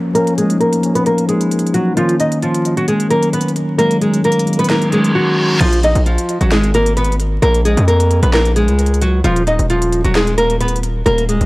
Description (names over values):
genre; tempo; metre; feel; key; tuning
hip hop, trap; 132 BPM; 4/4; half-time; Eb minor; A4 = 439 Hz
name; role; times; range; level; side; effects
mellow tine electric piano; accompaniment; 0.0-5.6 s; Eb3 to Eb4; -16 LUFS; equal; medium stereo tremolo, low-pass filter
downlifter and reverse cymbal; sound effects; 4.9-5.6 s; none; -22 LUFS; equal; none
nylon-string guitar; melody; 0.1-11.5 s; F3 to Eb5; -15 LUFS; equal; low-pass filter, tape echo
trap drum kit; drums; 0.2-11.5 s; crash cymbal, handclaps, hi-hat, snare drum; -24 LUFS; equal; none
distorted 808-style bass; bass; 5.6-11.5 s; Eb1 to F2; -14 LUFS; equal; distortion
room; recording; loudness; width
digital ambience; dry, gritty hardware recording, vinyl crackle; -12 LUFS; side -21 dB against mid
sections
0.0-5.6 A section; 5.6-11.5 B section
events
filter sweep 0.0-5.6; reverse cymbal 4.9-5.6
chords
0.0 Bbm; 2.0 Ebm7; 5.6 Bbm; 9.2 Eb5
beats
| 0.15 0.61 1.06 1.51 | 1.97 2.42 2.88 3.33 | 3.79 4.24 4.70 5.15 | 5.61 6.06 6.51 6.97 | 7.42 7.88 8.33 8.79 | 9.24 9.70 10.15 10.61 | 11.06